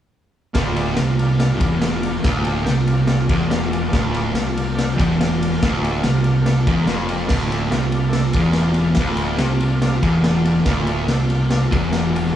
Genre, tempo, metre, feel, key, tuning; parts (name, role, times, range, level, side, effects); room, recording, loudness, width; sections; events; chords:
garage rock duo or trio; 143 BPM; 4/4; straight; D minor; A4 = 440 Hz
combo organ; sustained chords; 0.5-12.4 s; A4 to G5; -31 LUFS; equal
fuzz guitar; riff; 0.5-12.3 s; D2 to C3; -19 LUFS; equal; distortion
raw garage drum kit; drums; 0.5-12.2 s; crash cymbal, kick drum, ride cymbal, snare drum; -21 LUFS; equal
fuzz fingered electric bass; bass; 0.6-12.3 s; D1 to C2; -26 LUFS; equal; overdrive
moderate large studio reverb, RT60 1.2 s; band playing live in one room, cassette tape; -16 LUFS; side -10 dB against mid
0.6-12.4 A section
0.6 Dm